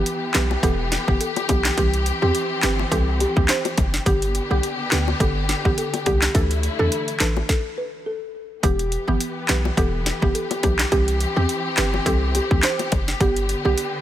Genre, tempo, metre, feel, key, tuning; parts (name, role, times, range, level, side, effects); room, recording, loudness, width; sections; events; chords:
dancehall; 105 BPM; 4/4; swing 56% on 16ths; E minor; A4 = 441 Hz
mallet-like synth pluck; accompaniment; 0.0-14.0 s; D3 to A4; -27 LUFS; right 3 dB; chorus
warm studio string section; sustained chords; 0.0-14.0 s; D3 to G4; -28 LUFS; left 3 dB; sidechain pumping
hard-hitting 808-style bass; bass; 0.0-13.7 s; E1 to E2; -23 LUFS; equal
island pop drum kit; drums; 0.1-13.9 s; handclaps, hi-hat, kick drum, snare drum; -22 LUFS; equal; overdrive
folk marimba with soft mallets; melody; 0.3-13.7 s; G4 to C5; -27 LUFS; equal; digital delay
bongos; percussion; 0.5-13.1 s; -29 LUFS; left 10 dB
light reverb, small room ambience; -18 LUFS; side -12 dB against mid
0.0-8.6 A section; 8.6-14.0 A section
stop 7.5-8.6
0.0 Em; 1.8 C; 4.1 G; 6.3 Dsus2; 8.6 Em; 10.9 C; 13.2 G